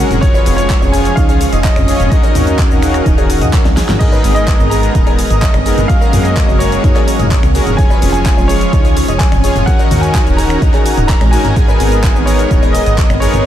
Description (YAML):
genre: progressive house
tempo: 127 BPM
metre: 4/4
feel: straight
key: G# dorian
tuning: A4 = 440 Hz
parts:
  - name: bright grand piano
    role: melody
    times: 0.0-13.5 s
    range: C#5 to A#5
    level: -21 LUFS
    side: equal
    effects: sidechain pumping, analog delay
  - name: soft supersaw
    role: second line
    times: 0.0-13.5 s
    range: C#5 to A#5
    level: -26 LUFS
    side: right 1 dB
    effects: none
  - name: lush unison pad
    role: sustained chords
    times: 0.0-13.5 s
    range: D#3 to E#5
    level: -20 LUFS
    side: right 1 dB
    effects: chorus, sidechain pumping
  - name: glassy wavetable pluck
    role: arpeggios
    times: 0.0-13.3 s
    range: G#3 to G#6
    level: -23 LUFS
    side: right 1 dB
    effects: chorus, sidechain pumping, analog delay
  - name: soft supersaw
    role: stabs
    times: 0.0-13.4 s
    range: B3 to C#5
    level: -19 LUFS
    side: left 2 dB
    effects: sidechain pumping, analog delay
  - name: plucky analog bass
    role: bass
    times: 0.0-13.4 s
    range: D#1 to F#2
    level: -16 LUFS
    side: equal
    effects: sidechain pumping
  - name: deep house drum kit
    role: drums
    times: 0.1-13.4 s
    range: crash cymbal, finger snaps, handclaps, hi-hat, shaker, snare drum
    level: -23 LUFS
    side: equal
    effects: none
  - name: electronic toms, congas and bongos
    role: percussion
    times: 0.1-13.4 s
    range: none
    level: -22 LUFS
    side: left 1 dB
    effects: sidechain pumping on perc, sidechain pumping on toms
  - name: electronic kick drum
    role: drums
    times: 0.2-13.1 s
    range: none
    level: -13 LUFS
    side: equal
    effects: none
room: light reverb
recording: none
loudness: -9 LUFS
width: side -11 dB against mid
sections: 0.0-13.5 A section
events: drum fill 3.7-4.0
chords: 0.2 C#/E#; 2.1 D#m7; 4.0 G#madd9; 5.9 F#add9; 7.8 C#/E#; 9.7 D#m7; 11.6 G#madd9